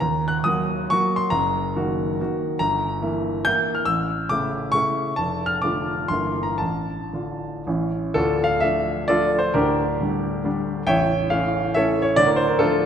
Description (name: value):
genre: classical, romantic triple-time dance for piano with dotted rhythms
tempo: 110-152 BPM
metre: 3/4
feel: rubato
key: D minor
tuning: A4 = 441 Hz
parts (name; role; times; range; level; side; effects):
- warm baby grand piano; solo; 0.0-12.9 s; A0 to G6; -20 LUFS; equal; none
room: wet concert hall reverb, RT60 2.0 s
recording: none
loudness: -20 LUFS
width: side -8 dB against mid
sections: 0.0-8.2 A section; 8.2-12.9 B section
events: none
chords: 0.0 Ebm; 1.3 Ebm/Gb; 2.6 Edim/G; 3.9 A; 5.2 Dm/F; 6.1 Edim/G; 6.6 Dm/A; 7.7 A; 8.2 Dm; 9.6 Gm/D; 10.9 A; 12.2 Dm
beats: | 0.00 0.45 0.89 | 1.31 1.75 2.19 | 2.60 3.02 3.46 | 3.87 4.29 4.73 | 5.16 5.62 6.09 | 6.60 7.13 7.67 | 8.16 8.63 9.10 | 9.55 10.02 10.46 | 10.87 11.30 11.76 | 12.18 12.61